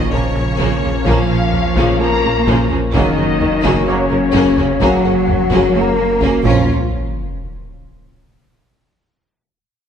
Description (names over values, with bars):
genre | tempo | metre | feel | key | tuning
cinematic, hybrid orchestral and electronic film score | 128 BPM | 4/4 | straight | Bb minor | A4 = 440 Hz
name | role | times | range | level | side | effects
rich symphonic violin section | melody | 0.0-6.7 s | Db5 to Db6 | -23 LUFS | left 3 dB | low-pass filter
warm symphonic violin section | second line | 0.0-6.7 s | Bb3 to Bb4 | -22 LUFS | left 3 dB | none
warm symphonic viola section | accompaniment | 0.0-6.7 s | Db3 to F4 | -22 LUFS | equal | low-pass filter
dark French horn section | sustained chords | 0.0-6.6 s | Db4 to Bb4 | -21 LUFS | left 6 dB | low-pass filter
sweeping resonant pad | sustained chords | 0.0-6.7 s | F3 to Db5 | -25 LUFS | left 1 dB | chorus, low-pass filter
pure sine sub bass | bass | 0.0-6.7 s | Gb1 to Bb1 | -24 LUFS | equal | none
rich symphonic cello section | bass | 0.0-6.7 s | Db3 to Db4 | -21 LUFS | right 4 dB | none
sub drop | sound effects | 0.0-1.1, 6.5-8.3 s | none | -24 LUFS | equal | none
clear trombone section | sustained chords | 0.1-6.6 s | F3 to Bb3 | -26 LUFS | right 3 dB | low-pass filter
rich symphonic double bass section | bass | 0.1-6.7 s | Gb1 to Bb1 | -22 LUFS | right 4 dB | none
taiko ensemble | drums | 0.4-7.3 s | none | -23 LUFS | equal | none
room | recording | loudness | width
wet scoring stage reverb, RT60 1.9 s | none | -12 LUFS | side -8 dB against mid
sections
0.0-6.7 A section; 6.7-8.6 B section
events
impact 0.0-1.1, 6.7-8.6; filter sweep 0.0-6.7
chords
0.0 Bbm; 2.9 Gb; 6.5 Bbm; 6.7 N.C.